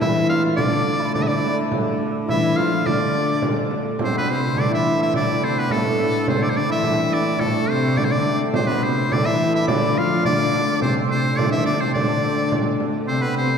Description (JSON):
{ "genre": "medieval dance", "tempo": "106 BPM", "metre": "2/4", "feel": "straight", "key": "D dorian", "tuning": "A4 = 440 Hz", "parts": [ { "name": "edgy shawm", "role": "melody", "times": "0.0-13.6 s", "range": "A4 to F5", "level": "-23 LUFS", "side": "equal", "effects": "tape echo" }, { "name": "dark viola da gamba", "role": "second line", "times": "0.0-13.6 s", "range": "A2 to F3", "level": "-23 LUFS", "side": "left 3 dB", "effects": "none" }, { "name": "hammered dulcimer", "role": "second line", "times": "0.0-13.6 s", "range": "A3 to F4", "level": "-26 LUFS", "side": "right 2 dB", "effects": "none" }, { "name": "warm hurdy-gurdy", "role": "drone", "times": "0.0-13.6 s", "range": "D3 to A3", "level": "-27 LUFS", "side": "right 1 dB", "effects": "none" }, { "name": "frame drum", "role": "percussion", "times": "0.0-13.1 s", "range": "none", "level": "-25 LUFS", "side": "right 2 dB", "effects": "none" } ], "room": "wet concert hall reverb, RT60 2.1 s", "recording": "heard from further back in the room", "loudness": "-18 LUFS", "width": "side -6 dB against mid", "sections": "0.0-4.0 A section; 4.0-13.1 B section", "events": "none", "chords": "none" }